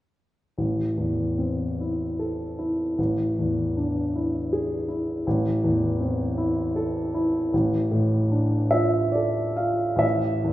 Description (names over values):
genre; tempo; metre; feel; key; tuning
classical, romantic nocturne for solo piano; 44-54 BPM (dotted quarters); 12/8; rubato; A minor; A4 = 437 Hz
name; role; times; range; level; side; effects
warm grand piano; solo; 0.6-10.5 s; A1 to F5; -22 LUFS; equal; none
room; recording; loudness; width
wet recital hall reverb, RT60 1.5 s; heard from further back in the room; -22 LUFS; side -14 dB against mid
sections
0.6-10.0 A section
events
none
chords
0.6 Am; 3.0 E7/A; 5.3 Am; 7.5 Dm/A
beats
| 0.57 1.80 2.98 4.14 | 5.26 6.38 7.52 8.73 | 10.03